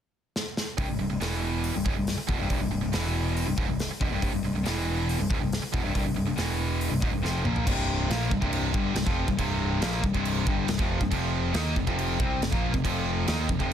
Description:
heavy metal; 139 BPM; 4/4; straight; A4 = 439 Hz
big rock drum kit; drums; 0.4-13.7 s; crash cymbal, hi-hat, kick drum, snare drum, toms; -30 LUFS; equal
distorted electric guitar; riff; 0.8-13.7 s; C2 to Eb4; -30 LUFS; left 8 dB; distortion
tight distorted guitar; riff; 0.8-13.7 s; C2 to Eb4; -31 LUFS; right 13 dB; distortion
growling picked electric bass; bass; 0.8-13.7 s; C1 to Eb2; -31 LUFS; equal; overdrive
light reverb; dense, heavily limited modern master; -25 LUFS; side -9 dB against mid
0.8-7.7 A section; 7.7-13.7 B section
drum fill 0.3-0.8, 7.2-7.7
0.0 N.C.; 0.8 C5; 1.2 E5; 1.7 C; 2.9 E5; 3.5 C; 4.7 E5; 5.2 C; 6.4 E5; 6.9 C5; 11.1 F5
0.35 | 0.78 1.21 1.64 2.07 | 2.50 2.93 3.36 3.79 | 4.22 4.65 5.08 5.51 | 5.95 6.38 6.81 7.24 | 7.67 8.10 8.53 8.96 | 9.39 9.82 10.25 10.68 | 11.11 11.54 11.98 12.41 | 12.84 13.27 13.70

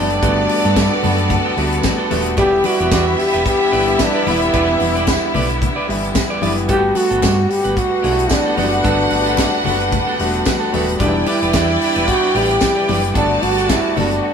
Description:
disco; 111 BPM; 4/4; swing 56% on 16ths; G major; A4 = 442 Hz
mellow trombone; melody; 0.0-14.3 s; D4 to G4; -18 LUFS; right 1 dB
warm studio violin section; second line; 0.0-14.2 s; G3 to A5; -21 LUFS; equal
clean electric guitar; accompaniment; 0.0-14.1 s; B3 to E5; -26 LUFS; right 4 dB
clear grand piano; accompaniment; 0.0-14.3 s; D3 to G4; -24 LUFS; left 1 dB
clear studio string section; sustained chords; 0.0-14.3 s; D3 to F#4; -25 LUFS; left 2 dB
hollow-body short-scale fingered electric bass; bass; 0.0-14.2 s; Eb1 to G2; -22 LUFS; equal
tight funk drum kit; drums; 0.1-14.2 s; hi-hat, kick drum, snare drum; -22 LUFS; equal
congas; percussion; 0.2-14.1 s; -28 LUFS; left 6 dB
tambourine; percussion; 0.8-13.8 s; -31 LUFS; right 5 dB
moderate stone room reverb, RT60 1.3 s; band playing live in one room; -14 LUFS; side -7 dB against mid
0.0-14.3 A section
0.0 Gmaj9; 2.4 Em7; 6.7 Gmaj9; 11.0 Em7; 13.2 Gmaj9
| 0.23 0.77 1.31 1.84 | 2.38 2.92 3.46 4.00 | 4.54 5.07 5.61 6.15 | 6.69 7.23 7.77 8.31 | 8.85 9.38 9.92 10.46 | 11.00 11.54 12.08 12.62 | 13.16 13.70 14.24

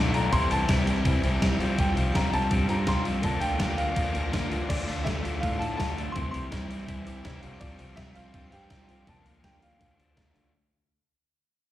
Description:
indie rock; 164 BPM; 4/4; straight; D minor; A4 = 439 Hz
clear upright piano; melody; 0.0-10.1 s; D5 to C6; -32 LUFS; equal; slapback echo
string machine, full ensemble; sustained chords; 0.0-10.5 s; D4 to Bb5; -41 LUFS; right 2 dB; phaser, ensemble chorus
crunchy overdriven guitar; riff; 0.0-10.5 s; C3 to F4; -31 LUFS; left 3 dB; slapback echo
modern bright fingered electric bass; bass; 0.0-10.5 s; B1 to A2; -30 LUFS; equal
gated 80s digital drum machine; drums; 0.1-10.4 s; crash cymbal, hi-hat, kick drum, snare drum; -30 LUFS; equal; gated reverb, gated reverb snare
twelve-string electric guitar; riff; 4.7-10.5 s; C3 to A4; -44 LUFS; right 9 dB; lush chorus, slapback echo
little or no reverb; live gig heard through the venue's PA, recital hall reverb; -24 LUFS; side -14 dB against mid
0.0-10.5 A section
fade-out 0.0-10.5
0.3 C; 1.6 Fsus2/C; 3.2 Bb/D; 4.7 Dm; 6.2 C; 7.4 Fsus2/C; 9.1 Bb/D; 9.8 Dm
| 0.33 0.69 1.05 1.42 | 1.78 2.15 2.51 2.88 | 3.24 3.61 3.97 4.34 | 4.70 5.07 5.43 5.79 | 6.16 6.52 6.89 7.25 | 7.62 7.98 8.35 8.71 | 9.08 9.44 9.81 10.17

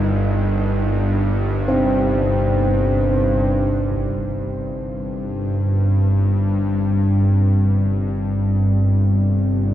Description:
dark ambient drone; free time; A4 = 439 Hz
deep dark ambient pad; sustained chords; 0.0-9.7 s; C4 to Eb5; -32 LUFS; right 1 dB
bowed-like drone; drone; 0.0-9.7 s; G1 to G2; -17 LUFS; equal; built-in reverb
bronze singing bowl; texture; 0.0-9.7 s; barely audible
carillon bells; arpeggios; 1.7-7.4 s; C4; -24 LUFS; equal; tape echo, shimmer reverb
impact; percussion; 3.9-4.1 s; -39 LUFS; right 1 dB
wet cathedral reverb, RT60 6.3 s; dark, warm production; -16 LUFS; side -12 dB against mid
0.0-3.9 A section; 3.9-9.7 B section
filter sweep on synth drone 3.9-9.7
0.0 Ebm; 3.9 C
free time

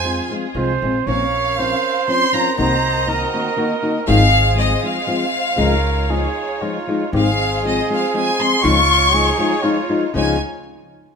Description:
mexican folk, mariachi; 119 BPM; 3/4; rubato; Db major; A4 = 440 Hz
clear chamber violin section; melody; 0.0-10.4 s; Eb5 to Db6; -18 LUFS; left 1 dB
mellow trumpet; second line; 0.0-10.4 s; F4 to Db5; -22 LUFS; right 5 dB
flamenco guitar; accompaniment; 0.0-10.4 s; Ab2 to Gb4; -21 LUFS; left 3 dB
warm studio violin section; sustained chords; 0.0-10.4 s; Ab3 to Eb5; -28 LUFS; equal
upright bass; bass; 0.0-10.4 s; Ab1 to F2; -20 LUFS; equal
moderate recital hall reverb, RT60 1.6 s; minimal, uncompressed stereo recording; -15 LUFS; side -6 dB against mid
0.0-7.1 A section; 7.1-10.1 B section; 10.1-11.2 C section
0.0 Fm; 1.1 Bbmadd9; 2.6 Cm7b5; 4.1 Ab6; 5.6 Dbadd9; 7.1 Ab6; 8.6 Dbadd9
0.04 0.56 | 1.07 1.58 2.08 | 2.58 3.08 3.58 | 4.07 4.57 5.07 | 5.58 6.09 6.61 | 7.13 7.64 8.14 | 8.64 9.14 9.64 | 10.14

